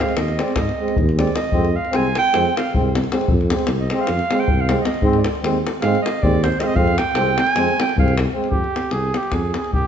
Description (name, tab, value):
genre	balkan folk, Balkan brass band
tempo	309 BPM (eighths)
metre	9/8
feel	straight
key	F minor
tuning	A4 = 440 Hz
part	clear clarinet	second line	0.0-8.2 s	C5 to Ab5	-22 LUFS	right 4 dB	none
part	bright trombone	accompaniment	0.0-8.5 s	C4	-26 LUFS	left 5 dB	none
part	dark euphonium	accompaniment	0.0-8.5 s	Ab3	-25 LUFS	right 7 dB	none
part	davul	percussion	0.0-9.8 s	none	-21 LUFS	left 2 dB	none
part	dark tuba	bass	0.2-9.9 s	C2 to Ab2	-22 LUFS	equal	none
part	mellow trumpet	melody	8.5-9.9 s	G4 to Ab4	-23 LUFS	right 3 dB	none
room	moderate recital hall reverb, RT60 1.6 s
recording	nothing above 7.9 kHz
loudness	-16 LUFS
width	side -8 dB against mid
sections	0.0-8.5 A section; 8.5-9.9 B section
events	clarinet solo 0.0-8.5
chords	0.0 Ab; 1.5 Fm; 5.0 Ab; 6.8 Fm